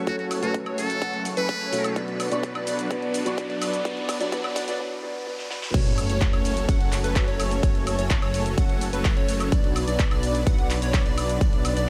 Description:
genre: EDM, festival progressive house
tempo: 127 BPM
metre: 4/4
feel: straight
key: F# minor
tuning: A4 = 440 Hz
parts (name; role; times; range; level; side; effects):
- felt-muted upright piano; accompaniment; 0.0-5.8 s; B2 to C#6; -34 LUFS; equal; sidechain pumping, delay
- lush unison pad; sustained chords; 0.0-11.9 s; F#3 to C#6; -37 LUFS; equal; chorus, sidechain pumping
- plucky unison lead; arpeggios; 0.0-11.9 s; B4 to F#5; -34 LUFS; equal; cassette tape, sidechain pumping, delay
- supersaw chords; riff; 0.0-11.9 s; F#3 to F#5; -33 LUFS; equal; phaser, sidechain pumping, low-pass filter, delay
- detuned saw bass; bass; 0.0-11.9 s; F#1 to B1; -32 LUFS; equal; chorus, sidechain pumping, high-pass filter
- riser and sub drop; sound effects; 0.8-7.6 s; none; -39 LUFS; equal; none
- trumpet with metal mute; melody; 0.1-2.0 s; F#4 to B4; -34 LUFS; equal; delay
- big-room dance drum kit; drums; 0.1-11.9 s; crash cymbal, handclaps, hi-hat, ride cymbal, shaker, snare drum, woodblock; -35 LUFS; equal; high-pass filter on hats, high-pass filter on perc, high-pass filter on snare, high-pass filter on cymbals
- electronic kick drum; drums; 0.1-11.5 s; none; -25 LUFS; equal; high-pass filter on kick
room: light reverb, digital ambience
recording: high-pass filter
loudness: -24 LUFS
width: mono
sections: 0.0-5.7 A section; 5.7-11.9 B section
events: build-up 0.0-5.7; filter sweep on supersaw synth 0.0-5.7; riser 0.8-5.7; drum fill 2.0-4.8, 5.4-5.7; break 4.8-5.7; drop 5.7-11.9; impact 5.7-7.6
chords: 0.0 F#m; 2.0 Bm; 5.7 F#m; 9.5 Bm

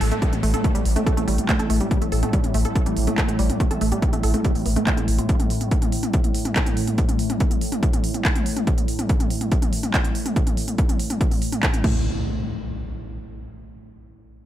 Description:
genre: driving peak-time techno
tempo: 142 BPM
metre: 4/4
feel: straight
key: unclear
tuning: A4 = 440 Hz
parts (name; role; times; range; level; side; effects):
- wide unison pluck; riff; 0.0-5.2, 11.8-12.0 s; G3 to A4; -26 LUFS; right 1 dB; sidechain pumping, tape echo
- saturated sub bass; bass; 0.0-5.2 s; A1; -24 LUFS; equal; overdrive, sidechain pumping, low-pass filter
- deep dark ambient pad; drone; 0.0-12.1 s; A2; -28 LUFS; equal; chorus, built-in reverb, sidechain pumping
- techno drum kit; drums; 0.0-11.9 s; crash cymbal, handclaps, hi-hat, toms; -27 LUFS; equal; none
- downlifter and impact; sound effects; 0.0-1.9, 11.8-13.5 s; none; -32 LUFS; equal; none
- electronic kick drum; drums; 0.2-11.9 s; none; -22 LUFS; equal; none
room: light reverb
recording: none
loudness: -19 LUFS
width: side -12 dB against mid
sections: 0.0-12.1 A section; 12.1-13.7 B section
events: none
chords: none

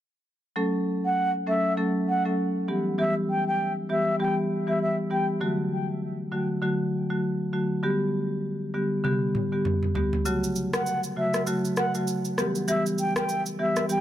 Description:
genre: afrobeats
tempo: 99 BPM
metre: 4/4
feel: swing 58% on 16ths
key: unclear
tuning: A4 = 440 Hz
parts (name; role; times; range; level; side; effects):
- marimba with medium hard mallets; accompaniment; 0.6-14.0 s; C#3 to A4; -26 LUFS; equal; none
- breathy mellow silver concert flute; melody; 1.1-5.3, 10.7-14.0 s; E5 to G5; -28 LUFS; equal; ping-pong delay
- deep house drum kit; drums; 9.0-14.0 s; rim click, shaker, toms; -29 LUFS; equal; none
room: light reverb, small room ambience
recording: none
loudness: -24 LUFS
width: side -12 dB against mid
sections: 0.6-14.0 A section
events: drum fill 9.0-10.3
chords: 0.6 F#m; 2.7 Em; 5.4 D; 7.8 G; 10.3 F#m; 12.4 Em

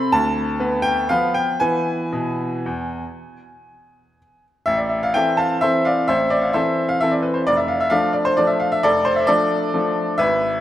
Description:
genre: classical, piano waltz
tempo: 112-136 BPM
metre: 3/4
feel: rubato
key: A minor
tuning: A4 = 443 Hz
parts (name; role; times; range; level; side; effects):
- bright grand piano; solo; 0.0-10.6 s; F1 to B5; -17 LUFS; equal; none
room: wet concert hall reverb, RT60 2.1 s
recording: none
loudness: -17 LUFS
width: side -12 dB against mid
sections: 0.0-4.7 A section; 4.7-10.6 B section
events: none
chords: 0.1 Bdim/D; 1.6 E; 4.7 Am; 7.5 Dm/F

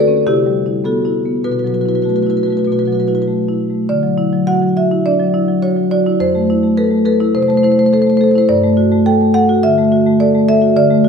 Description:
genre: classical, contemporary piece for solo marimba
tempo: 105 BPM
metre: 4/4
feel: rubato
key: B minor, D major from 3.9 s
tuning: A4 = 439 Hz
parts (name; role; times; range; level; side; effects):
- marimba with medium mallets; solo; 0.0-11.1 s; F2 to G5; -11 LUFS; equal; none
room: wet recital hall reverb, RT60 1.5 s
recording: heard from further back in the room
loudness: -12 LUFS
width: side -6 dB against mid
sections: 0.0-3.9 A section; 3.9-11.1 B section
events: none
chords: 0.3 Cmaj7; 1.4 B7sus4; 3.9 Dadd9; 6.2 Fmaj7; 8.5 Gsus2

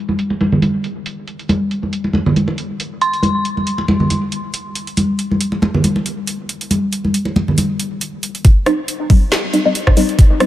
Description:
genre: deep dubstep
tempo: 138 BPM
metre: 4/4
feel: swing 55% on 16ths, half-time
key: C minor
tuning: A4 = 440 Hz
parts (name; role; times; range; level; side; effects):
- congas; percussion; 0.1-7.7 s; none; -17 LUFS; equal; dub echo
- garage drum kit; drums; 0.2-10.5 s; hi-hat, rim click, snare drum; -21 LUFS; right 1 dB; overdrive
- dark detuned synth bell; melody; 3.0-3.4 s; C6; -21 LUFS; right 1 dB; chorus, dub echo
- electronic kick drum; drums; 8.4-10.3 s; none; -9 LUFS; equal; overdrive
- filtered dub chord stab; stabs; 8.7-10.5 s; G3 to Eb4; -16 LUFS; left 1 dB; phaser, wide subtle chorus, dub echo
room: light reverb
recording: low-pass filter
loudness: -14 LUFS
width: side -13 dB against mid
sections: 0.0-8.4 A section; 8.4-10.5 B section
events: filter sweep 0.0-8.4; build-up 8.4-10.5; filter sweep on synth stab 8.4-10.5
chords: 0.0 N.C.; 8.4 Cm

